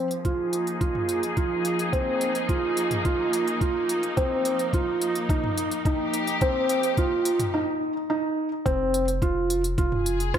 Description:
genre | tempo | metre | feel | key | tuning
piano and strings electronica | 107 BPM | 4/4 | straight | F minor | A4 = 440 Hz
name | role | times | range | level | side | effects
rich studio string section | sustained chords | 0.0-10.4 s | F3 to Ab4 | -30 LUFS | left 1 dB | sidechain pumping, low-pass filter
felt-muted upright piano | riff | 0.0-10.4 s | C4 to F4 | -25 LUFS | right 1 dB | digital delay
deep house drum kit | drums | 0.1-10.4 s | hi-hat, rim click, toms | -32 LUFS | equal | none
electronic kick drum | drums | 0.2-10.4 s | none | -26 LUFS | equal | none
warm sub bass | bass | 8.7-10.4 s | F1 | -29 LUFS | equal | sidechain pumping
room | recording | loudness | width
wet echo chamber reverb, RT60 1.5 s | none | -22 LUFS | side -9 dB against mid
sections
0.0-8.7 A section; 8.7-10.4 B section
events
build-up 0.0-8.7; break 7.5-8.7; drop 8.7-10.4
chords
0.0 Fm; 4.2 Cm/F; 8.7 Fm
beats
0.25 0.81 1.37 | 1.93 2.49 3.05 3.61 | 4.17 4.74 5.30 5.86 | 6.42 6.98 7.54 8.10 | 8.66 9.22 9.78 10.34

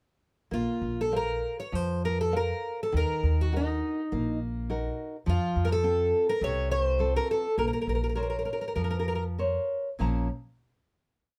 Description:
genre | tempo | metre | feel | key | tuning
fado-style ballad | 102 BPM | 4/4 | rubato | Bb harmonic minor | A4 = 440 Hz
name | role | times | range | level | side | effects
fingerpicked twelve-string acoustic guitar | melody | 0.5-9.2 s | Eb4 to Db5 | -31 LUFS | equal | none
nylon-string guitar | accompaniment | 0.5-10.3 s | Bb2 to Bb5 | -35 LUFS | equal | none
upright bass | bass | 0.5-10.3 s | Bb1 to F2 | -32 LUFS | equal | none
room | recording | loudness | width
light reverb | band playing live in one room | -29 LUFS | mono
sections
0.5-10.0 A section; 10.0-11.4 final chord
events
none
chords
0.5 Bbsus2; 2.9 Ebm; 5.3 F; 7.6 Bbmadd9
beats
| 0.52 1.12 1.73 2.33 | 2.93 3.52 4.11 4.69 | 5.27 5.84 6.41 6.99 | 7.57 8.16 8.76 9.38 | 10.00

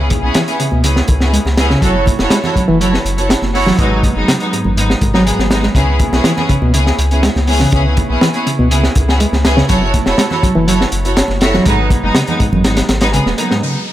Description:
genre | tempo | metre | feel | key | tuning
breakbeat, breaks | 122 BPM | 4/4 | straight | C# minor | A4 = 439 Hz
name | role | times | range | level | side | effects
rich studio string section | stabs | 0.0-13.5 s | F#3 to C#5 | -17 LUFS | right 1 dB | analog delay
saturated sub bass | bass | 0.0-13.3 s | D#1 to C#2 | -16 LUFS | equal | none
crunchy breakbeat drum kit | drums | 0.1-13.6 s | hi-hat, kick drum, snare drum | -16 LUFS | equal | analog delay
congas and bongos | percussion | 0.1-13.5 s | none | -26 LUFS | right 5 dB | none
reed electric piano | riff | 0.4-13.7 s | F#2 to C#4 | -17 LUFS | equal | fast tremolo, low-pass filter, analog delay
downlifter | sound effects | 13.6-13.9 s | none | -22 LUFS | equal | none
room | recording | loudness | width
light reverb, studio ambience | echo-heavy mix | -11 LUFS | side -13 dB against mid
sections
0.0-13.6 A section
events
none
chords
0.0 C#m7; 1.8 F#m7; 3.8 G#m7; 5.8 C#m7; 9.7 F#m7; 11.7 G#m7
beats
0.35 0.84 1.33 | 1.82 2.31 2.81 3.30 | 3.79 4.28 4.77 5.26 | 5.76 6.25 6.74 7.23 | 7.72 8.22 8.71 9.20 | 9.69 10.18 10.68 11.17 | 11.66 12.15 12.64 13.13 | 13.63

